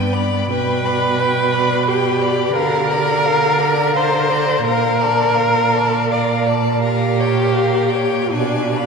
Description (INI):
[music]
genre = classical, slow romantic movement for string quartet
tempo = 68-90 BPM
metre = 3/4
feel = rubato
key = unclear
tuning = A4 = 440 Hz
[part]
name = rich violin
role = melody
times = 0.0-8.9 s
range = F5 to B5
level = -24 LUFS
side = left 6 dB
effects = none
[part]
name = rich violin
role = second line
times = 0.0-8.9 s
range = Bb4 to F5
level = -24 LUFS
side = left 4 dB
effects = none
[part]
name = warm viola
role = accompaniment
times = 0.0-8.9 s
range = B3 to D5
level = -17 LUFS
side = equal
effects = none
[part]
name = rich cello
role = bass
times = 0.0-8.9 s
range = G2 to D3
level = -20 LUFS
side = right 4 dB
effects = none
[sound]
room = wet cathedral reverb, RT60 5.1 s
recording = minimal, uncompressed stereo recording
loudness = -14 LUFS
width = side -5 dB against mid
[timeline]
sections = 0.0-8.9 A section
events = none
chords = 0.0 G; 0.5 G/B; 2.6 Bb/D; 4.7 Bbmaj7; 6.8 Gm7b5/Bb; 8.3 Bm6